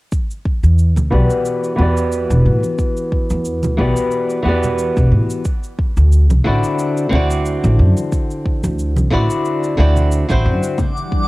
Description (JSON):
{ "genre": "sunset chillout", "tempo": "90 BPM", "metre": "4/4", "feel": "swing 55% on 16ths", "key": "E minor", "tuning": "A4 = 440 Hz", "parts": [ { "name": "electronic kick drum", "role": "drums", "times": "0.1-11.3 s", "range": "none", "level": "-20 LUFS", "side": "equal", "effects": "studio reverb, cassette tape" }, { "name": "shaker and congas", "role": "drums", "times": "0.1-11.1 s", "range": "none", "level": "-31 LUFS", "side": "left 2 dB", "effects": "studio reverb, cassette tape" }, { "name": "upright bass", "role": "bass", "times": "0.6-10.6 s", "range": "E1 to A2", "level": "-14 LUFS", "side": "equal", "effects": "tube saturation" }, { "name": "congas", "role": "percussion", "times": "1.0-10.1 s", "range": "none", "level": "-25 LUFS", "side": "right 2 dB", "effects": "none" }, { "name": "flamenco guitar", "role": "accompaniment", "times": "1.1-10.8 s", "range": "D3 to D5", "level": "-18 LUFS", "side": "equal", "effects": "auto-pan, low-pass filter, cassette tape, analog delay" }, { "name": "ethereal airy pad", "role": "sustained chords", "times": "10.9-11.3 s", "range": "E3 to F#5", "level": "-25 LUFS", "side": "left 2 dB", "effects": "ensemble chorus, built-in reverb, cassette tape" }, { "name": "twinkling granular texture", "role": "texture", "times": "10.9-11.3 s", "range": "D6", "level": "-24 LUFS", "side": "equal", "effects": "built-in reverb, cassette tape" } ], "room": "light reverb", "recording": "home recording on cassette", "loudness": "-14 LUFS", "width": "side -20 dB against mid", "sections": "0.1-11.3 A section", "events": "filter sweep on nylon-string guitar 0.1-11.3", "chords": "0.1 Em9; 5.5 D7" }